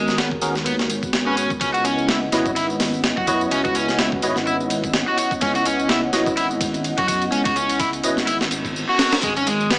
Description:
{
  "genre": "breakbeat, breaks",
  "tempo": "126 BPM",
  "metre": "4/4",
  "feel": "swing 56% on 16ths",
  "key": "unclear",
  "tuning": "A4 = 440 Hz",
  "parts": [
    { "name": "dark analog pad", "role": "sustained chords", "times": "0.0-9.8 s", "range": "G#3 to F#5", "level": "-26 LUFS", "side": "equal", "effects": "chorus, sidechain pumping" },
    { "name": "crunchy overdriven guitar", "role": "riff", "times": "0.0-9.8 s", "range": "G#3 to F#4", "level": "-22 LUFS", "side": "equal", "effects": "tube saturation, vintage 12-bit sampler grit, dub echo" },
    { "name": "barky tine electric piano", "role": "stabs", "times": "0.0-8.2 s", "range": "B3 to D#5", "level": "-26 LUFS", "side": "equal", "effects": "ensemble chorus, dub echo" },
    { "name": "dark detuned saw bass", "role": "bass", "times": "0.0-9.8 s", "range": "G#1 to F#2", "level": "-28 LUFS", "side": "equal", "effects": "none" },
    { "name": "breakbeat sampler-style drum kit", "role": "drums", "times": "0.1-9.8 s", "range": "hi-hat, kick drum, ride cymbal, snare drum", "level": "-23 LUFS", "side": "equal", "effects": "small room ambience" },
    { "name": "tambourine", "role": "drums", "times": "0.1-9.8 s", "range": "none", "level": "-31 LUFS", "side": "equal", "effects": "small room ambience" },
    { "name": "reverse cymbal", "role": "sound effects", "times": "8.5-9.2 s", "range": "none", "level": "-28 LUFS", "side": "equal", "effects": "none" }
  ],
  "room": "light reverb, digital ambience",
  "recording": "vinyl crackle, small speaker sound",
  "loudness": "-18 LUFS",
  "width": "side -22 dB against mid",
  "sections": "0.0-9.8 A section",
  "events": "reverse cymbal 8.5-9.2",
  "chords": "0.0 G#m11; 1.6 C#m11; 9.2 G#m11"
}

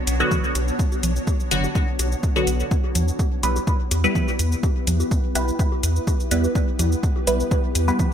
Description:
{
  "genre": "dub techno",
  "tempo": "125 BPM",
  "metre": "4/4",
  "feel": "straight",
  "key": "unclear",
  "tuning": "A4 = 440 Hz",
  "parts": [
    { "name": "granular cloud pad", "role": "sustained chords", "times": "0.0-8.1 s", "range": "B3 to C#5", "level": "-29 LUFS", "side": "left 1 dB", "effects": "built-in reverb, wide subtle chorus, sidechain pumping" },
    { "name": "round analog bass", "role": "bass", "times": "0.1-7.9 s", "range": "F#1 to E2", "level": "-22 LUFS", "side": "equal", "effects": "tube saturation, sidechain pumping" },
    { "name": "electronic hi-hat and cabasa", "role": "drums", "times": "0.1-8.1 s", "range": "none", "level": "-29 LUFS", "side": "left 1 dB", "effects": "overdrive, small room ambience" },
    { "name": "filtered dub chord stab", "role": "stabs", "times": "0.2-8.1 s", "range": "D3 to B4", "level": "-24 LUFS", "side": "equal", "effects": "phaser, cassette tape, sidechain pumping, dub echo" },
    { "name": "bongos and congas", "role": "percussion", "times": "0.2-8.1 s", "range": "none", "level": "-31 LUFS", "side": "right 1 dB", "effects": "overdrive, sidechain pumping on perc, small room ambience, dub echo" },
    { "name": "electronic kick drum", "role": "drums", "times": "0.3-8.1 s", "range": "none", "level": "-22 LUFS", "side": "equal", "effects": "overdrive, small room ambience" }
  ],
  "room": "light reverb",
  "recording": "bright 1980s-style digital production",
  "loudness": "-19 LUFS",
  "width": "side -9 dB against mid",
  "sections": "0.0-8.1 A section",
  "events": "none",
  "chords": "0.0 Bm; 2.7 Em"
}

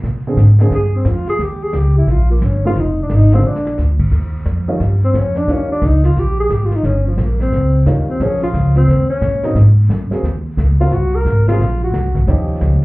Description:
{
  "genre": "jazz, small-group swing and bop",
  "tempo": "176 BPM",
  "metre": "4/4",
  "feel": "swing 63% on 8ths",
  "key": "Eb mixolydian",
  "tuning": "A4 = 440 Hz",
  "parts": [
    { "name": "upright bass", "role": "bass", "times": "0.0-12.8 s", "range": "F1 to Bb2", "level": "-13 LUFS", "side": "equal", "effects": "none" },
    { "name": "jazz brush drum kit", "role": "drums", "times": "0.0-12.8 s", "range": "brushed snare drum, crash cymbal, hi-hat, kick drum, snare drum", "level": "-24 LUFS", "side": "equal", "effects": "vintage 12-bit sampler grit" },
    { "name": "warm upright piano", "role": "accompaniment", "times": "0.3-5.7, 7.9-12.8 s", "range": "D3 to Ab4", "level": "-20 LUFS", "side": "right 2 dB", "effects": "none" },
    { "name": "breathy tenor saxophone", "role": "melody", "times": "0.8-12.3 s", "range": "F3 to Bb4", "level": "-19 LUFS", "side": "left 1 dB", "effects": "none" }
  ],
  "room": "little or no reverb",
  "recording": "heard muffled through a wall, club reverb, EQ",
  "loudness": "-12 LUFS",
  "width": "side -21 dB against mid",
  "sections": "0.0-4.1 A section; 4.1-12.8 B section",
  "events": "drum fill 3.4-3.8; tenor saxophone solo 4.1-12.8",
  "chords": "0.0 Bb9; 1.4 Eb9; 2.8 Fm; 3.4 Bb; 4.1 Eb9; 8.2 Bbm7; 8.9 Eb5; 9.6 Ab9; 12.3 Eb9"
}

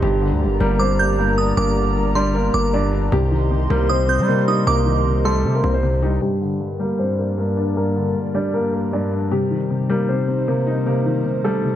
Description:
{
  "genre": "hip hop",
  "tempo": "155 BPM",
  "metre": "4/4",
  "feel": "half-time",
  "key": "G minor",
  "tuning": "A4 = 440 Hz",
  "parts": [
    { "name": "dark grand piano", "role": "melody", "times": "0.0-11.7 s", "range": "G3 to D5", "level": "-23 LUFS", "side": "equal", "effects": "low-pass filter" },
    { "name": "dark concert grand piano", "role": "accompaniment", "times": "0.0-11.8 s", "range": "G2 to Eb4", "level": "-21 LUFS", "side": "left 2 dB", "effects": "low-pass filter" },
    { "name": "dark analog pad", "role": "sustained chords", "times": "0.0-11.8 s", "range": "G2 to C6", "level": "-27 LUFS", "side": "right 1 dB", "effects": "chorus, low-pass filter" },
    { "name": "distorted 808-style bass", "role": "bass", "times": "0.0-6.2 s", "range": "G1 to G3", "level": "-20 LUFS", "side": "equal", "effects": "distortion" },
    { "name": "glassy synth bell", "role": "second line", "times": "0.8-5.8 s", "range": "C6 to G6", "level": "-24 LUFS", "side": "right 5 dB", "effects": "chorus, tremolo, ping-pong delay" }
  ],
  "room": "light reverb, studio ambience",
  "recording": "none",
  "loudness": "-17 LUFS",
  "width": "side -11 dB against mid",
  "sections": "0.0-6.2 A section; 6.2-11.8 B section",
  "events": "filter sweep 6.2-11.8",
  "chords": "0.0 Gm; 3.1 Cm; 6.2 Gm; 9.3 Cm"
}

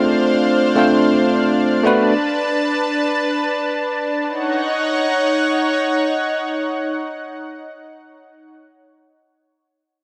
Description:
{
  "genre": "amapiano",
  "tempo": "free time",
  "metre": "none",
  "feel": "none",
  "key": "unclear",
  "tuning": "A4 = 441 Hz",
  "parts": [
    { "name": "bell-like tine electric piano", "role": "accompaniment", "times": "0.0-2.1 s", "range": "A3 to C5", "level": "-17 LUFS", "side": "equal", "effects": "none" },
    { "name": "lush unison pad", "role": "sustained chords", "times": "0.0-8.6 s", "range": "D4 to A5", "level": "-21 LUFS", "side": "equal", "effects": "chorus" }
  ],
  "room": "moderate scoring stage reverb, RT60 2.1 s",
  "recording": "dark, warm production",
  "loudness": "-18 LUFS",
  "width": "mono",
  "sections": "0.0-4.3 A section; 4.3-8.6 B section",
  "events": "drop 0.0-4.3",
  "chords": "0.0 Dm7; 1.8 Bm7; 4.3 Ebm7"
}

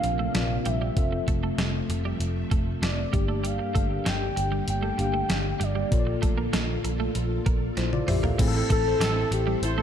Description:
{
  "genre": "1980s-style pop",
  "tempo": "97 BPM",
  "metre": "4/4",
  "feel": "straight",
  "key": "unclear",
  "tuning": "A4 = 440 Hz",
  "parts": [
    { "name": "warm velvety synth lead", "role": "melody", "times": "0.0-9.8 s", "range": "E4 to G5", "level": "-30 LUFS", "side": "left 1 dB", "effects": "chorus, digital delay" },
    { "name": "tine electric piano", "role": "accompaniment", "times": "0.0-9.8 s", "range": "G2 to F5", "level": "-32 LUFS", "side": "left 3 dB", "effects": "medium stereo tremolo" },
    { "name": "string machine, violas", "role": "sustained chords", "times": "0.0-9.8 s", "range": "C3 to C6", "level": "-33 LUFS", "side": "equal", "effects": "ensemble chorus" },
    { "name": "twelve-string electric guitar", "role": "riff", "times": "0.0-9.8 s", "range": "G3 to C4", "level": "-35 LUFS", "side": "right 7 dB", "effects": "analog chorus, digital delay" },
    { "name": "vintage muted picked electric bass", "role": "bass", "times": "0.0-9.8 s", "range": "F1 to Bb1", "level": "-29 LUFS", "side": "equal", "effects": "none" },
    { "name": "clean 12-bit digital drum machine", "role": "drums", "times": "0.0-9.8 s", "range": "crash cymbal, hi-hat, kick drum, snare drum, tambourine, toms", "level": "-27 LUFS", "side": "equal", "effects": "none" },
    { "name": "mellow horn section", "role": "stabs", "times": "8.5-9.8 s", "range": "C4 to C5", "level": "-32 LUFS", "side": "right 3 dB", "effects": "digital delay" }
  ],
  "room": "light reverb",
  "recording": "dark, warm production",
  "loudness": "-23 LUFS",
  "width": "side -9 dB against mid",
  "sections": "0.0-8.4 A section; 8.4-9.8 B section",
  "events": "drum fill 7.8-8.4",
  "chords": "0.0 Bbadd9; 1.0 Fmaj7; 3.1 Gm; 5.9 Bbmaj7; 8.4 Am"
}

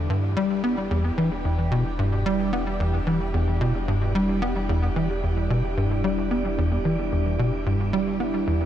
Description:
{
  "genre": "ambient, sequencer-driven space music",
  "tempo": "111 BPM",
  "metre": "4/4",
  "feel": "straight",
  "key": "E minor",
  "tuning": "A4 = 440 Hz",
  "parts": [
    { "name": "sweeping resonant pad", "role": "sustained chords", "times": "0.0-8.7 s", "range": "G3 to G4", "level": "-30 LUFS", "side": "right 1 dB", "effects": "chorus" },
    { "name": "tight sequencer bass", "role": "riff", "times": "0.0-8.7 s", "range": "E2 to B3", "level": "-23 LUFS", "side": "equal", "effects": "analog chorus, analog delay" },
    { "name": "warm sub bass", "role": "bass", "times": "0.0-8.7 s", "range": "E1", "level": "-32 LUFS", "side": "equal", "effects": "none" },
    { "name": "wind-like tuned noise texture", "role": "texture", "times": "0.0-8.7 s", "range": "D5", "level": "-38 LUFS", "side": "right 5 dB", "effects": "built-in reverb" }
  ],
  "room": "moderate shimmer reverb, RT60 8.3 s",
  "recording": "dark, warm production",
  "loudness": "-22 LUFS",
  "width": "side -11 dB against mid",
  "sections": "0.0-8.7 A section",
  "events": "none",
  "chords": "0.0 Em7"
}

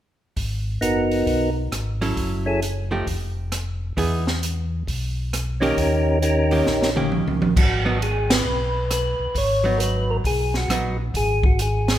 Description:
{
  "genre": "soul jazz organ trio",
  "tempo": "134 BPM",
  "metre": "4/4",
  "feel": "swing 65% on 8ths",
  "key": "G# minor",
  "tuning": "A4 = 439 Hz",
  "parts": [
    { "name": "mellow tonewheel organ", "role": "bass", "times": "0.4-12.0 s", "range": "E#1 to E2", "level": "-24 LUFS", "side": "equal", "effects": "slow rotary speaker" },
    { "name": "open jazz drum kit", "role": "drums", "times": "0.4-12.0 s", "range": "crash cymbal, hi-hat, kick drum, ride cymbal, rim click, snare drum, toms", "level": "-24 LUFS", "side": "equal", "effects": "none" },
    { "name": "percussive tonewheel organ", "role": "melody", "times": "0.8-2.6, 5.6-12.0 s", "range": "B3 to C#5", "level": "-22 LUFS", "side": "equal", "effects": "slow rotary speaker" },
    { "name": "archtop guitar, miked and amplified", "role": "accompaniment", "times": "2.0-11.0 s", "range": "D#3 to A4", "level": "-27 LUFS", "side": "right 2 dB", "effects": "none" }
  ],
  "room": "wet recital hall reverb, RT60 1.4 s",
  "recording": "recorded in a church or concert hall",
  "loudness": "-19 LUFS",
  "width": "side -12 dB against mid",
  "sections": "0.4-7.6 A section; 7.6-12.0 B section",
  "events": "drum fill 6.7-7.6; band accent 8.2",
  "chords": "0.4 G#m9; 2.2 F#m7; 3.1 N.C.; 4.0 Emaj7; 5.8 D#7; 7.6 G#m7"
}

